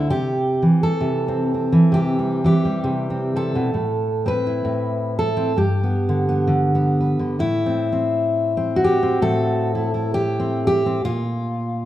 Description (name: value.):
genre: folk, solo fingerstyle acoustic guitar.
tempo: 66 BPM.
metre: 4/4.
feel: swing 58% on 8ths.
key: unclear.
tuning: A4 = 441 Hz.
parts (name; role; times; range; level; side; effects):
fingerpicked steel-string acoustic guitar; solo; 0.0-11.9 s; G2 to B4; -18 LUFS; equal; none.
room: wet recital hall reverb, RT60 1.3 s.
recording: recorded in a church or concert hall.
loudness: -18 LUFS.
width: side -13 dB against mid.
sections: 0.0-7.4 A section; 7.4-11.9 B section.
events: none.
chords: 0.1 C; 3.7 Am; 5.6 G; 7.4 Am; 11.0 Bb5.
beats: | 0.10 1.01 1.92 2.83 | 3.74 4.65 5.57 6.48 | 7.39 8.30 9.22 10.13 | 11.04.